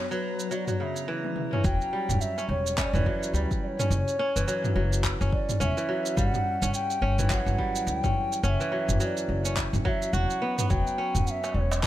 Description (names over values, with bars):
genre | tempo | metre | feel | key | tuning
organic downtempo | 106 BPM | 4/4 | swing 59% on 16ths | unclear | A4 = 441 Hz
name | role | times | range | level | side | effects
bass bansuri | melody | 0.0-11.9 s | B4 to G5 | -31 LUFS | equal | ping-pong delay
warbly tape-like pad | sustained chords | 0.0-1.1 s | F#3 to F#4 | -39 LUFS | left 6 dB | chorus, built-in reverb, sidechain pumping
kora | arpeggios | 0.0-11.9 s | C#3 to F#4 | -30 LUFS | equal | vintage 12-bit sampler grit, ping-pong delay
drifting glass-harmonics texture | texture | 0.1-1.1 s | A#5 | -48 LUFS | right 3 dB | none
deep house drum kit | drums | 0.1-11.9 s | handclaps, shaker, toms | -31 LUFS | equal | none
upright bass | bass | 1.6-11.9 s | E1 to D2 | -28 LUFS | equal | none
electronic kick drum | drums | 1.6-11.9 s | none | -29 LUFS | equal | none
darbuka | percussion | 11.4-11.8 s | none | -35 LUFS | right 2 dB | none
room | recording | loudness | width
light reverb, small room ambience | none | -24 LUFS | side -14 dB against mid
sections
0.0-1.6 A section; 1.6-11.9 B section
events
drum fill 1.2-1.6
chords
0.0 Bmadd9/F#; 1.6 Em9; 3.9 F#5; 6.2 G5; 8.4 Bmadd9/F#